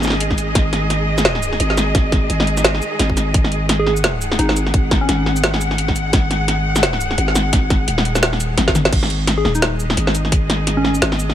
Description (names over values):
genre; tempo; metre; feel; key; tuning
half-time drum and bass; 172 BPM; 4/4; swing 58% on 16ths, half-time; unclear; A4 = 440 Hz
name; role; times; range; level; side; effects
soft struck synth lead; melody; 0.0-0.1, 3.8-5.5, 9.4-11.3 s; C#4 to G#4; -24 LUFS; left 1 dB; chorus, vintage 12-bit sampler grit, ping-pong delay
clear studio cello section; sustained chords; 0.0-11.3 s; D#3 to F#5; -23 LUFS; equal; vintage 12-bit sampler grit, sidechain pumping
growling 808-style bass; bass; 0.0-11.3 s; D#1 to G#1; -20 LUFS; equal; none
drum and bass drum kit; drums; 0.0-11.3 s; crash cymbal, hi-hat, shaker, snare drum, toms; -19 LUFS; equal; none
electronic kick drum; drums; 0.3-10.4 s; none; -17 LUFS; equal; none
room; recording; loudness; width
digital ambience; none; -15 LUFS; side -11 dB against mid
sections
0.0-8.9 A section; 8.9-11.3 A section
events
drop 0.0-8.9, 8.9-11.3; drum fill 8.6-8.9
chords
0.0 G#5